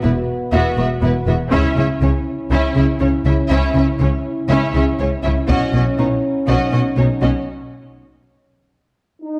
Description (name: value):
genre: cinematic, epic orchestral film score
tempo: 121 BPM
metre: 4/4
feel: straight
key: unclear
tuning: A4 = 435 Hz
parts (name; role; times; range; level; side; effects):
- warm symphonic violin section; melody; 0.0-7.3 s; B4 to E5; -30 LUFS; equal; none
- rich symphonic violin section; second line; 0.0-7.3 s; C#4 to F#4; -27 LUFS; equal; none
- warm chamber viola section; accompaniment; 0.0-7.3 s; B3 to C#4; -26 LUFS; equal; none
- mellow French horn section; sustained chords; 0.0-9.4 s; B3 to F#4; -26 LUFS; equal; none
- clear symphonic double bass section; bass; 0.0-7.3 s; E1 to C#2; -22 LUFS; equal; none
- rich symphonic cello section; bass; 0.0-7.3 s; E2 to C#3; -24 LUFS; equal; none
- taiko ensemble; drums; 1.5-2.5, 5.5-6.4 s; none; -25 LUFS; equal; none
room: moderate scoring stage reverb, RT60 1.7 s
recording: dark, warm production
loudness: -17 LUFS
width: mono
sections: 0.0-9.4 A section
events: build-up 0.0-9.4; break 7.5-9.4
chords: 0.0 Esus2; 1.5 C#m; 5.5 Badd9